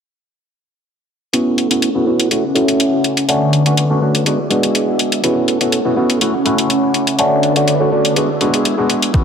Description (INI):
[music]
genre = filtered disco house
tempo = 123 BPM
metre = 4/4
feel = straight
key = A major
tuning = A4 = 440 Hz
[part]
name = overdriven clav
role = accompaniment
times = 1.3-9.2 s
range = G#3 to F#4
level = -15 LUFS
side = right 1 dB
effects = phaser, sidechain pumping, low-pass filter, tape echo
[part]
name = string machine, full ensemble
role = sustained chords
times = 1.3-9.2 s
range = D3 to D6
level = -18 LUFS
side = left 1 dB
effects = ensemble chorus, sidechain pumping, low-pass filter
[part]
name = electronic hi-hat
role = drums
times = 1.3-9.2 s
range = none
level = -18 LUFS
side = left 2 dB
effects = sidechain pumping on hats
[part]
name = electronic kick drum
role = drums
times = 9.1-9.2 s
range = none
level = -12 LUFS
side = equal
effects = overdrive
[sound]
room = moderate plate reverb, RT60 2.2 s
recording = echo-heavy mix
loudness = -13 LUFS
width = side -7 dB against mid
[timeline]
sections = 1.3-9.2 A section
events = filter sweep 1.3-9.2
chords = 1.3 A6; 2.3 Dmaj7; 3.3 Bm7/D; 4.3 E7; 5.2 A6; 6.2 Dmaj7; 7.2 Bm7/D; 8.2 E7